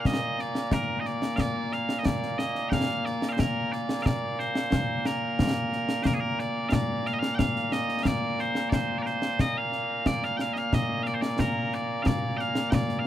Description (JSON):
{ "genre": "scottish traditional, Scottish pipe music", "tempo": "90 BPM", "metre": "2/4", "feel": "straight", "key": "Bb major", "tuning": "A4 = 440 Hz", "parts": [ { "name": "loud bright bagpipes", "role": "melody", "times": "0.0-13.1 s", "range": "Bb2 to G5", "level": "-28 LUFS", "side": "equal", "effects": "none" }, { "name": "concert snare drum and concert bass drum", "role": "drums", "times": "0.1-13.0 s", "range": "none", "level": "-28 LUFS", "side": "left 1 dB", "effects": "none" } ], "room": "little or no reverb", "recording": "none", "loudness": "-25 LUFS", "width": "side -12 dB against mid", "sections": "0.0-6.7 A section; 6.7-13.1 A section", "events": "none", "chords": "none" }